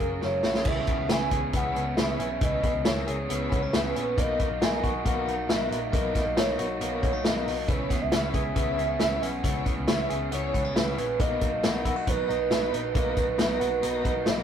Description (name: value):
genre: jangly indie pop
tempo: 137 BPM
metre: 4/4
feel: straight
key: unclear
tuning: A4 = 439 Hz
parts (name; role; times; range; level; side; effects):
- hollow clarinet-like synth lead; melody; 0.0-14.4 s; A#4 to G#5; -29 LUFS; right 2 dB; chorus
- crunchy overdriven guitar; accompaniment; 0.0-14.4 s; B2 to A#4; -34 LUFS; right 4 dB; none
- direct-recorded clean electric guitar; arpeggios; 0.0-14.4 s; E3 to G#4; -36 LUFS; left 5 dB; analog delay
- vintage muted picked electric bass; bass; 0.0-14.4 s; F#1 to C#2; -35 LUFS; left 1 dB; none
- vintage drum kit; drums; 0.0-14.4 s; crash cymbal, hi-hat, kick drum, snare drum; -27 LUFS; equal; none
- overdriven combo organ; accompaniment; 0.7-14.4 s; B3 to A#5; -34 LUFS; left 1 dB; none
room: moderate small room reverb, RT60 0.5 s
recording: rough rehearsal-room recording, warm saturation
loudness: -24 LUFS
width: side -8 dB against mid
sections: 0.7-14.4 A section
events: drum fill 0.2-0.7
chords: 0.0 F#add9; 0.7 C#m7; 4.2 Bmaj7; 7.7 C#m7; 11.2 Bmaj7